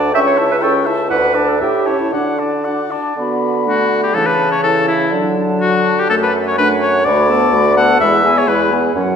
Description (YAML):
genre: quick classical-period movement for wind quintet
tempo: 124 BPM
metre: 2/4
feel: rubato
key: D major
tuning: A4 = 440 Hz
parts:
  - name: mellow concert flute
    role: melody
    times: 0.0-9.2 s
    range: F#5 to D6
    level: -22 LUFS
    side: left 6 dB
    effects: none
  - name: clear oboe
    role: second line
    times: 0.0-8.7 s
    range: E4 to G5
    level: -16 LUFS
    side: left 3 dB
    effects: none
  - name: clear clarinet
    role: accompaniment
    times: 0.0-9.2 s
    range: C#4 to E5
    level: -20 LUFS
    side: right 4 dB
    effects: none
  - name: warm French horn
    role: accompaniment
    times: 0.0-9.2 s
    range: E3 to F#4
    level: -22 LUFS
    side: left 1 dB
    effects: none
  - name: warm bassoon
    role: bass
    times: 0.0-9.2 s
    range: C#2 to D3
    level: -18 LUFS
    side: right 1 dB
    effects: none
room: wet scoring stage reverb, RT60 1.8 s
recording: recorded in a church or concert hall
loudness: -12 LUFS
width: side -7 dB against mid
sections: 0.0-3.2 A section; 3.2-9.2 A section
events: none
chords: 0.1 A7/C#; 1.1 D; 1.6 A7; 2.1 D; 4.2 A/C#; 5.1 D; 6.1 D/F#; 7.1 Bm7/D; 8.0 E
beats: | 0.14 0.62 | 1.11 1.61 | 2.13 2.65 | 3.17 3.67 | 4.15 4.64 | 5.13 5.62 | 6.10 6.58 | 7.06 7.53 | 8.01 8.49 | 8.96